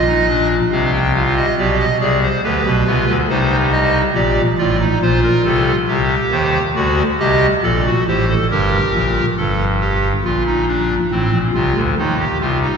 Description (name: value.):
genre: classical, baroque-style 3-part fugue for pipe organ.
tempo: 70 BPM.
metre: 3/4.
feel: straight.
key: unclear.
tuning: A4 = 440 Hz.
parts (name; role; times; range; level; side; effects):
pipe organ, clarinet reed; solo; 0.0-12.8 s; G1 to G5; -14 LUFS; equal; none.
room: wet church reverb, RT60 3.7 s.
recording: heard from further back in the room, nothing above 7.7 kHz.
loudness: -14 LUFS.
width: side -6 dB against mid.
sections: 0.0-9.4 A section; 9.4-12.8 B section.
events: none.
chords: 0.0 N.C.; 0.7 Cmadd11; 1.6 G7/B; 3.3 Cm; 4.1 Gm; 5.9 Cm; 6.7 D7; 8.5 Gm; 11.1 F/A; 12.0 Eb.